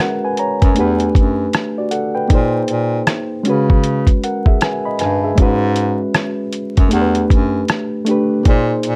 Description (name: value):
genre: lo-fi hip hop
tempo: 78 BPM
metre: 4/4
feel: swing 62% on 16ths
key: unclear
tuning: A4 = 440 Hz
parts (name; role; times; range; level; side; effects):
- reed electric piano; accompaniment; 0.0-9.0 s; G#3 to B5; -20 LUFS; equal; cassette tape
- lo-fi sampler-style drum kit; drums; 0.4-9.0 s; hi-hat, kick drum, rim click; -16 LUFS; equal; none
- bright bass clarinet; bass; 0.6-9.0 s; E2 to C#3; -21 LUFS; equal; none
room: light reverb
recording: vinyl crackle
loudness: -16 LUFS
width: mono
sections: 0.0-9.0 A section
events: none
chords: 0.0 G#m7; 0.8 Em9; 2.3 A#sus2; 3.5 C#5; 5.4 G#m7; 6.9 Em9; 8.5 A#sus2